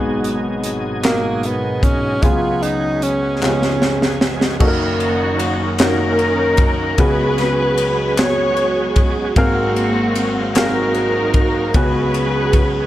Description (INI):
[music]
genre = slow gospel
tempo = 50 BPM (dotted quarters)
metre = 6/8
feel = straight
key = F# major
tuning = A4 = 439 Hz
[part]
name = warm grand piano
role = accompaniment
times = 0.0-12.9 s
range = F#1 to E#5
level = -20 LUFS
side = left 1 dB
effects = none
[part]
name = bright tonewheel organ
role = sustained chords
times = 0.0-12.9 s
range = B2 to E#5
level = -24 LUFS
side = right 2 dB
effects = slow rotary speaker, overdrive, chorus vibrato
[part]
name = crisp fusion drum kit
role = drums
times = 0.2-12.7 s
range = crash cymbal, hi-hat, kick drum, ride cymbal, snare drum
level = -19 LUFS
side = equal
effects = none
[part]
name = breathy tenor saxophone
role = melody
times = 1.0-4.3 s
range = A#3 to E#4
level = -20 LUFS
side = right 2 dB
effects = none
[part]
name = group handclap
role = percussion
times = 1.0-10.9 s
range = none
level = -24 LUFS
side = left 4 dB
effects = none
[part]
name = muted studio string section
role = melody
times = 4.6-12.9 s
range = A#3 to C#5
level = -18 LUFS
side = equal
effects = tape echo
[sound]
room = light reverb, small room ambience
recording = dark, warm production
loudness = -14 LUFS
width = side -14 dB against mid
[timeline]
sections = 0.0-4.6 A section; 4.6-12.9 B section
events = drum fill 3.4-4.6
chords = 0.0 G#m7; 2.2 C#7sus4; 3.4 C#7; 4.6 F#6; 7.0 C#7sus4; 9.4 G#13; 11.7 C#7sus4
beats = 1.03 | 2.22 3.41 | 4.61 5.80 | 6.99 8.18 | 9.37 10.55 | 11.74